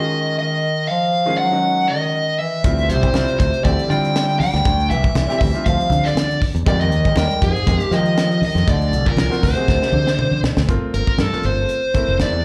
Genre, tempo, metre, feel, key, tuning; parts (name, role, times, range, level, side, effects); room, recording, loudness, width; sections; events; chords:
electric jazz fusion; 119 BPM; 4/4; swing 54% on 16ths; A4 = 440 Hz
dark smooth lead guitar; melody; 0.0-12.4 s; Ab4 to G5; -23 LUFS; equal; overdrive, slapback echo
warm bass clarinet; second line; 0.0-10.4 s; Ab2 to G3; -27 LUFS; equal; slapback echo
clear grand piano; accompaniment; 0.0-12.3 s; Eb3 to Bb4; -28 LUFS; equal; slapback echo
modern bright fingered electric bass; bass; 2.6-12.4 s; F1 to F3; -22 LUFS; equal
tight funk drum kit; drums; 2.6-12.3 s; hi-hat, kick drum, snare drum, toms; -23 LUFS; equal
congas; percussion; 2.6-12.3 s; -28 LUFS; equal
light reverb, studio ambience; live gig heard through the venue's PA, club reverb; -18 LUFS; mono
0.0-10.7 A section; 10.7-12.4 B section
drum fill 9.7-10.7; lead electric guitar solo 10.7-12.4
0.0 Ebm11; 2.6 Dm11; 6.7 Fm11; 8.7 D7b13; 10.7 Gm11